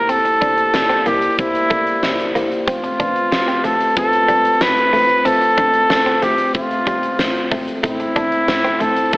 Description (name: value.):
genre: 1980s-style pop.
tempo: 93 BPM.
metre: 4/4.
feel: straight.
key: unclear.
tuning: A4 = 440 Hz.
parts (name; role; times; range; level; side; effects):
clear flugelhorn; melody; 0.0-9.2 s; E4 to B4; -16 LUFS; equal; none.
mellow tine electric piano; accompaniment; 0.0-9.2 s; A2 to D5; -22 LUFS; left 1 dB; analog chorus.
solid FM bass; bass; 0.0-9.2 s; E1 to C2; -33 LUFS; equal; none.
direct-recorded clean electric guitar; riff; 0.1-8.9 s; G3 to D4; -25 LUFS; right 1 dB; lush chorus.
huge arena drum kit; drums; 0.1-9.2 s; hi-hat, kick drum, snare drum; -22 LUFS; equal; gated reverb.
room: moderate digital room reverb, RT60 1.2 s, small room ambience.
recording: AM radio sound.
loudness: -14 LUFS.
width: side -23 dB against mid.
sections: 0.0-9.2 A section.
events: none.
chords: 0.0 C7; 2.7 F; 7.8 Am.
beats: | 0.10 0.74 1.39 2.03 | 2.67 3.32 3.97 4.61 | 5.26 5.90 6.55 7.19 | 7.84 8.48 9.13.